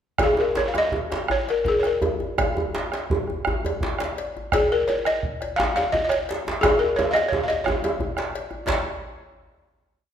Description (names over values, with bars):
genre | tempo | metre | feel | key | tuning
west african traditional, West African drum ensemble | 109-124 BPM (dotted quarters) | 12/8 | straight | Db major pentatonic | A4 = 443 Hz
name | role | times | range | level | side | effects
balafon | melody | 0.2-8.8 s | Ab4 to F5 | -22 LUFS | left 1 dB | none
bombo | percussion | 0.2-8.8 s | none | -28 LUFS | right 3 dB | none
cowbell | percussion | 0.2-8.8 s | none | -33 LUFS | left 5 dB | none
djembe | percussion | 0.2-8.8 s | none | -33 LUFS | left 2 dB | none
djembe | percussion | 0.2-8.8 s | none | -26 LUFS | right 2 dB | none
room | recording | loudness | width
wet recital hall reverb, RT60 1.4 s | minimal, uncompressed stereo recording | -21 LUFS | side -9 dB against mid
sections
0.2-8.7 A section; 8.7-10.1 final note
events
speeding up 0.2-10.1; drum fill 6.6-8.7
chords
none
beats
| 0.20 0.75 1.30 1.84 | 2.39 2.93 3.47 4.01 | 4.54 5.07 5.60 6.12 | 6.64 7.16 7.67 8.17 | 8.67